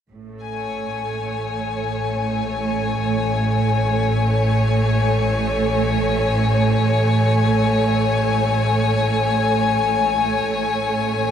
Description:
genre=ambient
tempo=free time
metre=none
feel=none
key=A major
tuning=A4 = 440 Hz
part: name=clear studio string section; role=sustained chords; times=0.1-11.3 s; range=A2 to G#5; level=-19 LUFS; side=equal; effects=none
part: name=warm studio double bass section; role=bass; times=0.1-11.3 s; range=A1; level=-22 LUFS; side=equal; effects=none
room=wet plate reverb, RT60 2.4 s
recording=none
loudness=-17 LUFS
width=side -8 dB against mid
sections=0.1-11.3 A section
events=none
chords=0.1 Amaj7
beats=free time

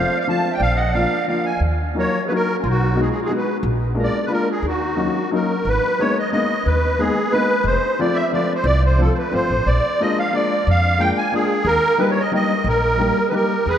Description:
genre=musette waltz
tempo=179 BPM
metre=3/4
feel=rubato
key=Eb minor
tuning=A4 = 440 Hz
part: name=musette accordion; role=melody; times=0.0-13.8 s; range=F4 to A5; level=-20 LUFS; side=right 1 dB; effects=none
part: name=clear clarinet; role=second line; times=0.0-5.3, 13.3-13.8 s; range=Db4 to F5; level=-28 LUFS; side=right 3 dB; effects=none
part: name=warm upright piano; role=accompaniment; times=0.0-13.5 s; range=F3 to G4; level=-22 LUFS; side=left 3 dB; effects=none
part: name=upright bass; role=bass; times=0.0-13.8 s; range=F1 to E#2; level=-20 LUFS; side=equal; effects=none
room=wet cathedral reverb, RT60 5.0 s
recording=in a vast, echoing space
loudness=-16 LUFS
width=side -9 dB against mid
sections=0.0-5.7 A section; 5.7-13.8 B section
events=none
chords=0.0 F; 0.6 Bb; 1.6 Ebm; 2.6 B6; 3.6 Bb7; 4.6 Ebm7; 5.7 G#madd9; 7.7 F; 9.7 A#7; 11.7 D#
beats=0.27 | 0.61 0.94 1.28 | 1.62 1.96 2.30 | 2.63 2.96 3.30 | 3.63 3.96 4.30 | 4.63 4.97 5.32 | 5.67 6.00 6.33 | 6.67 6.99 7.32 | 7.65 7.99 8.32 | 8.65 8.98 9.32 | 9.67 10.01 10.34 | 10.67 11.00 11.33 | 11.66 11.99 12.32 | 12.66 12.99 13.33 | 13.67

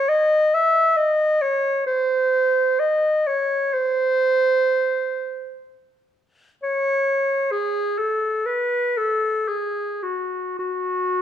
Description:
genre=classical, free, expressive piece for unaccompanied clarinet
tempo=51-69 BPM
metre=4/4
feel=rubato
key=unclear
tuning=A4 = 435 Hz
part: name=mellow clarinet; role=solo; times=0.0-11.2 s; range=F#4 to E5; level=-19 LUFS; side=equal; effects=none
room=moderate stone room reverb, RT60 1.1 s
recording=minimal, uncompressed stereo recording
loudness=-19 LUFS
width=side -10 dB against mid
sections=0.0-11.2 A section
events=none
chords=none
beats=0.11 0.99 1.87 | 2.79 3.75 4.74 5.69 | 6.63 7.51 8.46 9.49 | 10.59

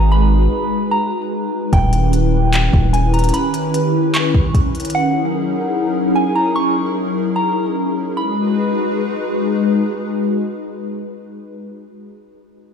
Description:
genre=hip hop, atmospheric cloud-rap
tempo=149 BPM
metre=4/4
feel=half-time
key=G# minor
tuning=A4 = 439 Hz
part: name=soft synth bell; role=melody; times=0.0-9.3 s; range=F#5 to C#6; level=-22 LUFS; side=right 1 dB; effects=chorus, phaser, digital delay
part: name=hollow soft pad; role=sustained chords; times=0.0-12.1 s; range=D#3 to B4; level=-18 LUFS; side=left 1 dB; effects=ensemble chorus, sidechain pumping
part: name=long sustained 808-style bass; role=bass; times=0.0-3.3 s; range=D#1 to G#1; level=-14 LUFS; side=equal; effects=none
part: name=smooth R&B drum kit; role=drums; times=1.7-4.9 s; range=handclaps, hi-hat, kick drum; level=-17 LUFS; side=equal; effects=overdrive
room=light reverb, digital ambience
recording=played on a big sound system in a bare room, stone room reverb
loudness=-15 LUFS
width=side -7 dB against mid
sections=0.0-8.2 A section; 8.2-11.4 B section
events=break 0.0-1.7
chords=0.0 G#m9; 1.7 D#7b9b13; 4.9 F#13; 8.2 G#m7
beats=| 0.12 0.52 0.92 1.32 | 1.73 2.13 2.53 2.94 | 3.34 3.74 4.14 4.55 | 4.95 5.35 5.75 6.16 | 6.56 6.96 7.37 7.77 | 8.17 8.57 8.98 9.38 | 9.78 10.18 10.59 10.99

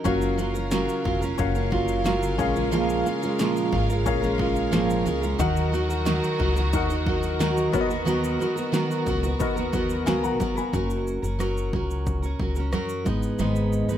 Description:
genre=acoustic pop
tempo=90 BPM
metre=4/4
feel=straight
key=F# major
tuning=A4 = 440 Hz
part: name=clear upright piano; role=accompaniment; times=0.0-10.9 s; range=B3 to B5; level=-31 LUFS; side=left 7 dB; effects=none
part: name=picked steel-string acoustic guitar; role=accompaniment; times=0.0-14.0 s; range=G#2 to B4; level=-25 LUFS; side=right 2 dB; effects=none
part: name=warm studio string section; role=sustained chords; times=0.1-10.7 s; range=C#3 to E#5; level=-34 LUFS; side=left 1 dB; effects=none
part: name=upright bass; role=bass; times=0.1-14.0 s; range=E#1 to F#2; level=-28 LUFS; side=left 1 dB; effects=none
part: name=punchy analog drum machine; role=drums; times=0.1-14.0 s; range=kick drum, rim click, shaker, snare drum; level=-30 LUFS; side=equal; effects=overdrive
room=light reverb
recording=none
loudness=-22 LUFS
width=side -10 dB against mid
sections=0.1-10.7 A section; 10.7-14.0 B section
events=none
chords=0.1 F#maj7; 2.4 A#m7; 5.4 D#m; 7.7 Bmaj7; 10.7 F#; 13.1 G#m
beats=| 0.05 0.72 1.39 2.06 | 2.73 3.39 4.06 4.73 | 5.40 6.06 6.73 7.40 | 8.06 8.73 9.40 10.07 | 10.73 11.40 12.06 12.73 | 13.40

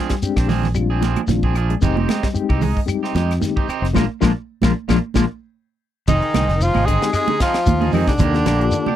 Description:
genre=afrobeat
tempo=113 BPM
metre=4/4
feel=swing 53% on 16ths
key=F dorian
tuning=A4 = 440 Hz
part: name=semi-hollow electric guitar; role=arpeggios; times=0.0-9.0 s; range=C3 to C4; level=-25 LUFS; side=left 8 dB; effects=lush chorus
part: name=electric guitar at the edge of break-up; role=stabs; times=0.0-9.0 s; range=F3 to Ab4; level=-25 LUFS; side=right 9 dB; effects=none
part: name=tight funk drum kit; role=drums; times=0.1-8.9 s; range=hi-hat, kick drum, snare drum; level=-22 LUFS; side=equal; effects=none
part: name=mellow reed electric piano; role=accompaniment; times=0.2-9.0 s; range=Ab3 to G4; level=-24 LUFS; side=left 9 dB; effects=fast tremolo
part: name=congas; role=percussion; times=0.2-9.0 s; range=none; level=-24 LUFS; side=right 9 dB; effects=none
part: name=shekere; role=percussion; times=0.2-8.9 s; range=none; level=-25 LUFS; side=left 1 dB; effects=none
part: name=fingered electric bass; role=bass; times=0.4-8.7 s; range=F1 to F2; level=-20 LUFS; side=equal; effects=none
part: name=claves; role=percussion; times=0.4-9.0 s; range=none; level=-35 LUFS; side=left 13 dB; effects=none
part: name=breathy tenor saxophone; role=melody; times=6.1-9.0 s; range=D4 to Ab4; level=-21 LUFS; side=equal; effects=none
part: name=growling baritone saxophone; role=second line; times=6.1-9.0 s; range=D3 to Ab3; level=-27 LUFS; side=left 7 dB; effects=none
part: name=trombone with plunger mute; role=second line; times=6.1-9.0 s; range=D3 to Ab3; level=-28 LUFS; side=right 4 dB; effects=none
room=little or no reverb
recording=dry, close 1970s-style studio recording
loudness=-16 LUFS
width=side -11 dB against mid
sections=0.0-6.1 A section; 6.1-9.0 B section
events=band accent 4.0-6.1; drum fill 5.5-6.1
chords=0.0 Bb9; 1.8 Fm9; 4.0 Bb7; 6.1 Fm7; 8.2 Ebmaj7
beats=0.23 0.77 1.30 | 1.83 2.36 2.89 3.42 | 3.96 4.49 5.02 5.55 | 6.08 6.61 7.14 7.67 | 8.20 8.73

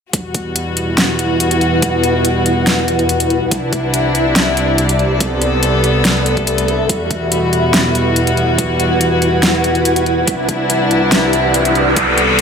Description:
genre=heavy wobble dubstep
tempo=142 BPM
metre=4/4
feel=half-time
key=E minor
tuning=A4 = 439 Hz
part: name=rich chamber string section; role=sustained chords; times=0.1-12.4 s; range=C2 to A4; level=-15 LUFS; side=left 1 dB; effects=sidechain pumping
part: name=dubstep drum kit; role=drums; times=0.1-12.4 s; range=hi-hat, snare drum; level=-16 LUFS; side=equal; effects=overdrive, studio reverb
part: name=electronic kick drum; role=drums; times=0.1-12.1 s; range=none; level=-21 LUFS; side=right 1 dB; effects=overdrive, high-pass filter on kick, studio reverb
part: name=granular cloud pad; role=texture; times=0.7-12.4 s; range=E4 to B5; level=-17 LUFS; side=equal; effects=built-in reverb, sidechain pumping
part: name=riser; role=sound effects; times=11.2-12.4 s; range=none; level=-17 LUFS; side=right 1 dB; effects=none
room=moderate lush hall reverb, RT60 2.1 s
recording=none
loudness=-12 LUFS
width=side -6 dB against mid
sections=0.1-12.4 A section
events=riser 11.2-12.4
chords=0.1 Emadd9; 3.5 Cadd9; 5.2 Amadd9/C; 6.9 Emadd9; 10.3 Cadd9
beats=| 0.13 0.56 0.98 1.40 | 1.82 2.25 2.67 3.09 | 3.51 3.94 4.36 4.78 | 5.21 5.63 6.05 6.47 | 6.89 7.32 7.74 8.16 | 8.59 9.01 9.43 9.85 | 10.28 10.70 11.12 11.54 | 11.96 12.39

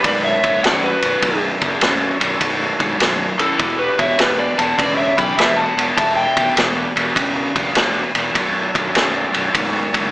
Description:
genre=blues rock power trio and southern rock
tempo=101 BPM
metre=4/4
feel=swing 66% on 8ths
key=B minor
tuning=A4 = 441 Hz
part: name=overdriven slide guitar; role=melody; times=0.0-6.5 s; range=A4 to B5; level=-19 LUFS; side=equal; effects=digital delay
part: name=overdriven tonewheel organ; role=sustained chords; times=0.0-10.1 s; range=D4 to E5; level=-27 LUFS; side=right 2 dB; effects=none
part: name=biting overdriven guitar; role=riff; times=0.0-10.1 s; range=B1 to C#3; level=-21 LUFS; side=equal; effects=none
part: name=fuzz fingered electric bass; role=bass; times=0.0-10.1 s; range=B0 to B1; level=-27 LUFS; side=equal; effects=overdrive
part: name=vintage drum kit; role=drums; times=0.0-10.0 s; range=kick drum, ride cymbal, snare drum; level=-18 LUFS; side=equal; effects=none
part: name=bluesy overdriven lead guitar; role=second line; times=0.1-6.5 s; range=E4 to G5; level=-25 LUFS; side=right 1 dB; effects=distortion
room=light reverb, small room ambience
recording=small speaker sound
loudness=-14 LUFS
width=side -19 dB against mid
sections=0.0-10.1 A section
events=none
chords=0.0 Bm7; 3.6 Em7; 8.3 Bm7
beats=0.04 0.64 | 1.23 1.82 2.41 3.00 | 3.59 4.19 4.78 5.37 | 5.97 6.56 7.16 7.75 | 8.35 8.95 9.54

